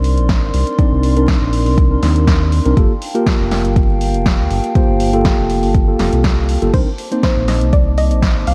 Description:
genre	deep house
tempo	121 BPM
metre	4/4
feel	swing 54% on 16ths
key	C minor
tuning	A4 = 439 Hz
part	dark analog pad	sustained chords	0.0-8.5 s	Bb4 to D6	-27 LUFS	equal	chorus, sidechain pumping
part	mellow tine electric piano	stabs	0.0-8.5 s	Bb3 to D5	-21 LUFS	equal	vintage 12-bit sampler grit, sidechain pumping
part	round analog bass	bass	0.0-8.5 s	F1 to Eb2	-18 LUFS	equal	sidechain pumping
part	deep house drum kit	drums	0.0-8.5 s	crash cymbal, hi-hat, snare drum	-25 LUFS	equal	none
part	electronic kick drum	drums	0.3-8.3 s	none	-17 LUFS	equal	none
part	soft round pluck	melody	6.7-8.5 s	C5 to F5	-25 LUFS	equal	chorus, vintage 12-bit sampler grit, tape echo
room	light reverb, digital ambience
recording	vinyl crackle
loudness	-14 LUFS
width	mono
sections	0.0-8.5 A section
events	none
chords	0.0 Cm9; 2.8 Gm9; 6.7 Cm9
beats	0.29 | 0.79 1.28 1.78 2.27 | 2.77 3.27 3.76 4.26 | 4.75 5.25 5.75 6.24 | 6.74 7.23 7.73 8.22

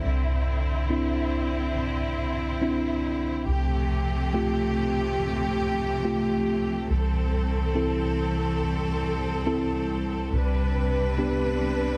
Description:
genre	pop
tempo	70 BPM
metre	4/4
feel	straight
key	C major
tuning	A4 = 441 Hz
part	tine electric piano	accompaniment	0.0-12.0 s	C2 to A4	-28 LUFS	equal	none
part	rich symphonic string section	sustained chords	0.0-12.0 s	C2 to B4	-30 LUFS	equal	none
room	light reverb, digital ambience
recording	none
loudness	-26 LUFS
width	mono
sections	0.0-12.0 A section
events	none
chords	0.0 Cadd9; 3.5 Fadd9/C; 6.9 Am/C; 10.3 G/C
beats	| 0.05 0.91 1.76 2.62 | 3.48 4.33 5.19 6.05 | 6.91 7.76 8.62 9.48 | 10.33 11.19

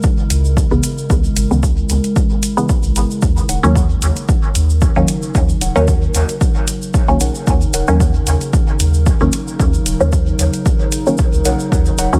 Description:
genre	dub techno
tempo	113 BPM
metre	4/4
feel	swing 54% on 16ths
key	unclear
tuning	A4 = 440 Hz
part	warbly tape-like pad	sustained chords	0.0-12.2 s	C#3 to A#4	-26 LUFS	equal	chorus, built-in reverb, vintage 12-bit sampler grit, sidechain pumping
part	electronic kick drum	drums	0.0-11.8 s	none	-18 LUFS	equal	overdrive
part	tube shaker	percussion	0.0-12.2 s	none	-30 LUFS	equal	dub echo
part	soft dub sub bass	bass	0.3-12.2 s	D#1 to D#2	-19 LUFS	equal	sidechain pumping
part	electronic hi-hat	drums	0.3-12.1 s	none	-25 LUFS	equal	overdrive
part	filtered dub chord stab	stabs	0.7-12.2 s	C#3 to C#4	-21 LUFS	equal	phaser, cassette tape, sidechain pumping, dub echo
part	filtered dub chord stab	riff	3.5-7.9, 11.5-12.1 s	D#4 to F#5	-28 LUFS	equal	phaser, sidechain pumping, dub echo
room	digital ambience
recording	echo-heavy mix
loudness	-15 LUFS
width	mono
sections	0.0-12.2 A section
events	none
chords	0.0 C#m7; 3.2 D#m7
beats	0.04 0.57 | 1.10 1.63 2.16 2.69 | 3.22 3.75 4.29 4.82 | 5.35 5.88 6.41 6.94 | 7.47 8.00 8.53 9.06 | 9.60 10.13 10.66 11.19 | 11.72

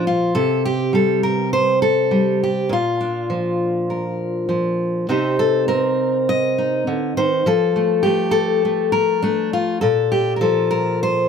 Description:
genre	folk, solo fingerstyle acoustic guitar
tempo	102 BPM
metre	4/4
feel	straight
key	C dorian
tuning	A4 = 440 Hz
part	fingerpicked steel-string acoustic guitar	solo	0.0-11.3 s	Bb2 to Eb5	-16 LUFS	left 1 dB	none
room	light reverb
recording	none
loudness	-16 LUFS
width	side -6 dB against mid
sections	0.0-11.3 A section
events	none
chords	0.3 C5; 2.7 Bb; 5.1 Cm7; 7.5 F; 9.8 Bb5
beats	| 0.35 0.94 1.53 2.12 | 2.71 3.30 3.90 4.50 | 5.09 5.69 6.29 6.88 | 7.47 8.06 8.65 9.24 | 9.83 10.42 11.01

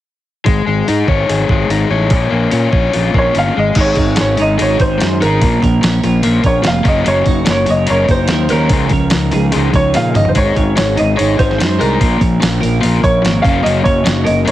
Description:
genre	indie rock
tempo	146 BPM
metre	4/4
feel	straight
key	unclear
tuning	A4 = 440 Hz
part	overdriven electric guitar	riff	0.5-14.5 s	Bb2 to Db5	-17 LUFS	left 6 dB	none
part	fuzz fingered electric bass	bass	0.5-14.5 s	F1 to Bb2	-16 LUFS	right 1 dB	overdrive
part	clean 12-bit digital drum machine	drums	0.5-14.5 s	crash cymbal, hi-hat, kick drum, snare drum, toms	-17 LUFS	right 1 dB	none
part	warm upright piano	melody	3.2-14.5 s	Bb4 to F5	-17 LUFS	equal	analog delay
part	twelve-string electric guitar	riff	3.8-14.5 s	Ab2 to Db5	-20 LUFS	right 6 dB	lush chorus, analog delay
room	light reverb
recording	heavily compressed radio sound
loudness	-11 LUFS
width	side -14 dB against mid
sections	0.5-3.8 A section; 3.8-14.5 B section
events	drum fill 9.9-10.4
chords	0.5 Absus4; 2.1 Bbm; 3.6 Ab5; 3.8 Absus4; 5.4 Bbm; 6.9 Gb6; 8.7 Dbadd9; 10.4 Absus4; 12.0 Bbm; 13.4 Gb6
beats	| 0.47 0.89 1.30 1.71 | 2.12 2.53 2.94 3.35 | 3.76 4.18 4.59 5.00 | 5.41 5.82 6.23 6.65 | 7.06 7.47 7.88 8.29 | 8.70 9.12 9.53 9.94 | 10.35 10.76 11.17 11.59 | 12.00 12.41 12.82 13.23 | 13.64 14.06 14.47

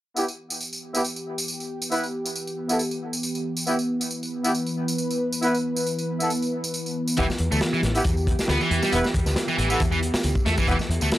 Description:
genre	breakbeat, breaks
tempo	137 BPM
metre	4/4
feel	swing 55% on 16ths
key	E minor pentatonic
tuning	A4 = 439 Hz
part	lush unison pad	sustained chords	0.9-11.2 s	E3 to B4	-28 LUFS	equal	chorus, sidechain pumping
part	bright horn section	stabs	0.2-10.8 s	B3 to B4	-27 LUFS	equal	low-pass filter, analog delay
part	tambourine	drums	0.2-11.2 s	none	-31 LUFS	right 1 dB	none
part	distorted electric guitar	riff	7.2-11.1 s	E3 to B3	-26 LUFS	right 1 dB	distortion, tube saturation, analog delay
part	overdriven picked electric bass	bass	7.2-11.1 s	E1 to E2	-25 LUFS	equal	none
part	crunchy breakbeat drum kit	drums	7.2-11.2 s	hi-hat, kick drum, snare drum	-25 LUFS	equal	none
room	moderate small room reverb, RT60 0.6 s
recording	dry, gritty hardware recording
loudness	-22 LUFS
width	side -14 dB against mid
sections	0.2-11.2 A section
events	filter sweep on analog synth pad 0.2-11.2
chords	0.2 Em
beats	| 0.17 0.61 1.05 1.48 | 1.92 2.36 2.80 3.23 | 3.67 4.11 4.55 4.99 | 5.42 5.86 6.30 6.74 | 7.18 7.62 8.05 8.49 | 8.93 9.37 9.80 10.24 | 10.68 11.12

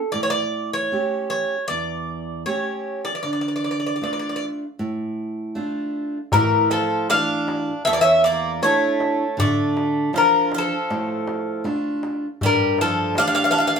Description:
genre	greek folk, Greek bouzouki band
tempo	78 BPM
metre	4/4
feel	straight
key	D harmonic minor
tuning	A4 = 439 Hz
part	Greek bouzouki	melody	0.0-13.8 s	A4 to F5	-20 LUFS	left 1 dB	none
part	fingerpicked steel-string acoustic guitar	accompaniment	0.1-13.8 s	E2 to G4	-26 LUFS	right 1 dB	none
part	Greek bouzouki	second line	6.3-13.8 s	E3 to D4	-25 LUFS	right 3 dB	none
part	darbuka	percussion	6.3-13.8 s	none	-28 LUFS	left 2 dB	none
room	wet studio reverb, RT60 0.6 s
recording	band playing live in one room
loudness	-19 LUFS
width	side -6 dB against mid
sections	0.0-6.3 A section; 6.3-13.8 B section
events	speeding up 0.0-13.8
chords	0.1 A7; 3.2 Dm; 6.3 Asus4; 9.4 Dm; 12.4 Gsus2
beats	| 0.15 0.92 1.70 2.47 | 3.25 4.02 4.79 5.56 | 6.33 7.09 7.86 8.62 | 9.38 10.14 10.90 11.65 | 12.41 13.16

